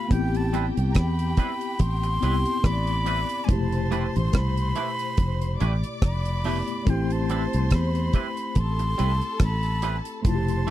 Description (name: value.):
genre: lovers rock reggae.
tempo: 71 BPM.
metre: 4/4.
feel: swing 56% on 16ths.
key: A minor.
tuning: A4 = 440 Hz.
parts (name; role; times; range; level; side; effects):
breathy concert flute; melody; 0.0-10.7 s; G5 to C6; -31 LUFS; left 1 dB; tape echo.
warm studio violin section; second line; 0.0-10.7 s; G4 to D6; -36 LUFS; left 2 dB; none.
tine electric piano; accompaniment; 0.0-10.7 s; B2 to G4; -30 LUFS; left 3 dB; overdrive, fast stereo tremolo.
fingered electric bass; bass; 0.1-10.7 s; F1 to E2; -24 LUFS; equal; none.
deep reggae drum kit; drums; 0.1-10.7 s; hi-hat, kick drum, rim click; -23 LUFS; equal; none.
twangy electric guitar; stabs; 0.5-10.7 s; G3 to B4; -30 LUFS; right 6 dB; analog chorus.
room: little or no reverb.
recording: dry, close 1970s-style studio recording.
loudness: -22 LUFS.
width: side -14 dB against mid.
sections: 0.0-10.7 A section.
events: none.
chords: 0.1 Am9; 3.5 Fmaj9#11; 6.9 Am9.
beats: | 0.11 0.95 1.80 2.64 | 3.49 4.33 5.18 6.02 | 6.87 7.71 8.56 9.40 | 10.25.